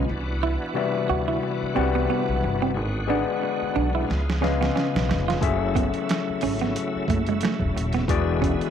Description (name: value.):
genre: R&B, neo-soul.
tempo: 90 BPM.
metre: 4/4.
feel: swing 56% on 16ths.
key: unclear.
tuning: A4 = 440 Hz.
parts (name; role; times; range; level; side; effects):
clean electric guitar; second line; 0.0-8.5 s; G#3 to F#4; -29 LUFS; right 9 dB; tape echo.
overdriven tine electric piano; accompaniment; 0.0-8.7 s; C3 to F#5; -26 LUFS; left 8 dB; none.
bright tonewheel organ; sustained chords; 0.0-8.7 s; C#3 to F#4; -31 LUFS; right 1 dB; chorus vibrato, slow rotary speaker.
upright bass; bass; 0.0-8.5 s; D#1 to D2; -27 LUFS; equal; none.
boom bap sampler-style drum kit; drums; 4.1-8.7 s; finger snaps, hi-hat, kick drum, snare drum; -27 LUFS; right 2 dB; overdrive.
room: light reverb.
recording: 1960s-style stereo with parts hard left and right, vinyl crackle.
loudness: -22 LUFS.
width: side -8 dB against mid.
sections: 0.0-8.7 A section.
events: drum fill 4.1-5.4.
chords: 0.1 Cmaj9#11; 2.7 G#m7b5; 4.1 C#7; 5.4 F#m7; 8.1 E7.